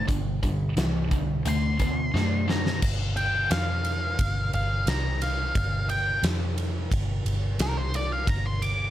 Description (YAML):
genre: blues rock power trio and southern rock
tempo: 88 BPM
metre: 4/4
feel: straight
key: unclear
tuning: A4 = 440 Hz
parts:
  - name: octave-fuzz lead guitar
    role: melody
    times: 0.0-8.9 s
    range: Bb4 to D6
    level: -29 LUFS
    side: equal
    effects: distortion
  - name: tight distorted guitar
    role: riff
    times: 0.0-2.8 s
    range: G2 to B3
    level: -28 LUFS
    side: left 1 dB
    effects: distortion
  - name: vintage muted fingered electric bass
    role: bass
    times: 0.0-8.9 s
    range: G1 to F#2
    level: -28 LUFS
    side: equal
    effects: none
  - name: huge arena drum kit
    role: drums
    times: 0.1-8.8 s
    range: crash cymbal, hi-hat, kick drum, ride cymbal, snare drum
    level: -28 LUFS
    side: equal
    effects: none
room: light reverb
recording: none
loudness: -24 LUFS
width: side -13 dB against mid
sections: 0.0-2.8 A section; 2.8-8.9 B section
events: drum fill 2.1-2.8; lead electric guitar solo 2.8-8.9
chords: 0.1 G5; 1.5 D7; 2.8 N.C.